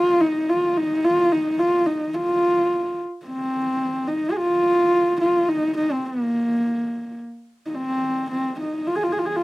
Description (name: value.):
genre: mongolian traditional, Mongolian folk.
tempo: 107 BPM.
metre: 4/4.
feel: straight.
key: F yu mode.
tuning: A4 = 441 Hz.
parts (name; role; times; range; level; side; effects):
dark horsehead fiddle; solo; 0.0-9.4 s; Bb3 to Ab4; -19 LUFS; equal; none.
room: moderate studio reverb, RT60 0.5 s.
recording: dry, close 1970s-style studio recording.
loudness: -19 LUFS.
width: side -19 dB against mid.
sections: 0.0-3.3 A section; 3.3-9.4 B section.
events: none.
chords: none.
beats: 0.49 | 1.04 1.60 2.16 2.71 | 3.27 3.83 4.39 4.95 | 5.51 6.07 6.63 7.19 | 7.75 8.30 8.86 9.42.